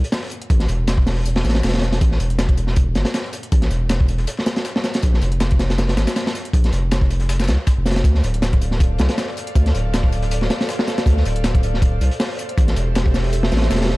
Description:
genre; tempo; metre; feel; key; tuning
drum and bass, jungle; 159 BPM; 4/4; swing 54% on 16ths; D minor; A4 = 440 Hz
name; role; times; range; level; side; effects
saturated sub bass; bass; 0.0-14.0 s; D1 to D2; -19 LUFS; equal; tube saturation
crunchy breakbeat drum kit; drums; 0.0-14.0 s; hi-hat, kick drum, snare drum; -19 LUFS; equal; none
breakbeat sampler-style drum kit; drums; 0.1-13.8 s; hi-hat, snare drum, tambourine; -35 LUFS; left 4 dB; high-pass filter on perc, high-pass filter on hats, high-pass filter on snare
airy breathy pad; sustained chords; 8.0-14.0 s; G4 to F5; -28 LUFS; right 1 dB; chorus
room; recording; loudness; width
small room ambience; dark, warm production; -16 LUFS; side -21 dB against mid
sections
0.0-14.0 A section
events
none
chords
0.0 N.C.; 0.5 A5; 4.3 N.C.; 8.0 Dm7; 12.6 Am7

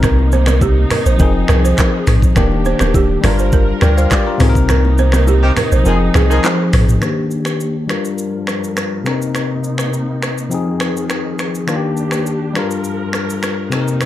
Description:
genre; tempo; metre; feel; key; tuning
afrobeats; 103 BPM; 4/4; straight; C minor; A4 = 440 Hz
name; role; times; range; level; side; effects
bell-like tine electric piano; accompaniment; 0.0-14.1 s; C3 to G5; -18 LUFS; left 4 dB; low-pass filter
warm studio string section; sustained chords; 0.0-14.1 s; Eb2 to Bb4; -25 LUFS; right 2 dB; low-pass filter
balafon; riff; 0.0-6.7 s; G4 to C5; -21 LUFS; right 7 dB; digital delay
punchy sub bass; bass; 0.0-7.0 s; Eb1 to D2; -14 LUFS; equal; none
afro-pop drum kit; drums; 0.0-14.1 s; finger snaps, handclaps, hi-hat, kick drum, rim click, shaker, toms; -18 LUFS; equal; none
congas and bongos; percussion; 0.0-6.6 s; none; -22 LUFS; right 2 dB; none
warm horn section; second line; 5.4-6.5 s; Eb3 to Ab4; -22 LUFS; left 1 dB; none
room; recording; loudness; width
small room ambience; dark, warm production; -13 LUFS; side -13 dB against mid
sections
0.0-7.0 A section; 7.0-14.1 B section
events
kick muted 4.7-7.0; band accent 4.7-7.0; filter sweep 7.0-14.1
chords
0.0 Cm7; 1.2 Fm7; 2.4 Ebmaj7; 3.2 Gm7; 4.4 Cm7; 5.9 Fm7; 7.0 Ebmaj7; 7.9 Gm7; 9.1 Cm7; 10.5 Fm7; 11.7 Ebmaj7; 12.6 Gm7

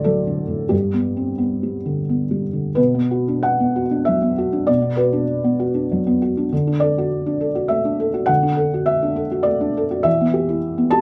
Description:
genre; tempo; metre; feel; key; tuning
neoclassical minimalist piano; 86-104 BPM; 3/4; rubato; unclear; A4 = 441 Hz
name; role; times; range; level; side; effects
felt-muted upright piano; solo; 0.0-11.0 s; D2 to A5; -19 LUFS; equal; none
room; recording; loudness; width
light reverb; close, detailed microphones; -20 LUFS; mono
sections
0.0-2.8 A section; 2.8-11.0 B section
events
none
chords
0.0 D; 0.7 G; 2.8 Bm; 6.5 D; 10.1 Em

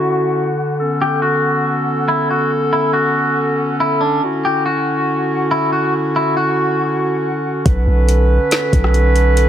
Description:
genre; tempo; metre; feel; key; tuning
hip hop, atmospheric cloud-rap; 140 BPM; 4/4; half-time; unclear; A4 = 440 Hz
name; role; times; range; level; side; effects
clean electric guitar; melody; 0.0-7.6 s; D4 to G4; -18 LUFS; left 1 dB; low-pass filter, tape echo
warm woodwind section; sustained chords; 0.0-9.5 s; D3 to B4; -17 LUFS; equal; sidechain pumping, low-pass filter
long sustained 808-style bass; bass; 7.7-9.5 s; B1; -13 LUFS; equal; none
smooth R&B drum kit; drums; 7.7-9.5 s; hi-hat, kick drum, rim click, snare drum; -17 LUFS; equal; none
room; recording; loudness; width
moderate lush hall reverb, RT60 1.7 s; none; -14 LUFS; side -10 dB against mid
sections
0.0-7.7 A section; 7.7-9.5 B section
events
filter sweep 0.0-7.7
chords
0.0 Dmaj9; 0.8 Bm9; 4.2 Dmaj9; 7.7 Bm9

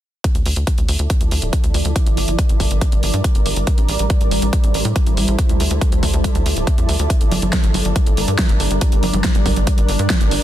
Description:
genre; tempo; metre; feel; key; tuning
uplifting trance; 140 BPM; 4/4; straight; D minor; A4 = 440 Hz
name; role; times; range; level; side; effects
big-room dance drum kit; drums; 0.2-10.4 s; congas, hi-hat, snare drum; -23 LUFS; right 1 dB; overdrive, studio reverb
electronic kick drum; drums; 0.2-10.2 s; none; -17 LUFS; equal; overdrive, studio reverb
tight sequencer bass; bass; 0.3-10.4 s; D1 to A2; -20 LUFS; equal; sidechain pumping
room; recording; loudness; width
little or no reverb; dense, heavily limited modern master; -14 LUFS; side -12 dB against mid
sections
0.2-10.4 A section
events
none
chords
none

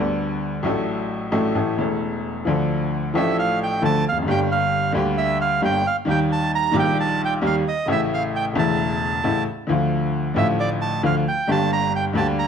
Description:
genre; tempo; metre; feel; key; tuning
tango; 133 BPM; 4/4; rubato; D harmonic minor; A4 = 440 Hz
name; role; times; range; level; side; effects
bright upright piano; accompaniment; 0.0-12.5 s; E1 to A4; -20 LUFS; left 1 dB; none
bandoneon; melody; 3.2-12.5 s; D5 to Bb5; -23 LUFS; right 4 dB; plate reverb
room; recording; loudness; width
moderate large studio reverb, RT60 1.1 s; dark, warm production; -19 LUFS; side -7 dB against mid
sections
0.0-2.5 A section; 2.5-12.5 B section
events
none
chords
0.0 Gadd9; 0.7 D/A; 1.6 A; 2.5 Dm; 4.3 Gm; 6.1 Eb; 7.9 A; 9.7 Dm; 11.5 Gm

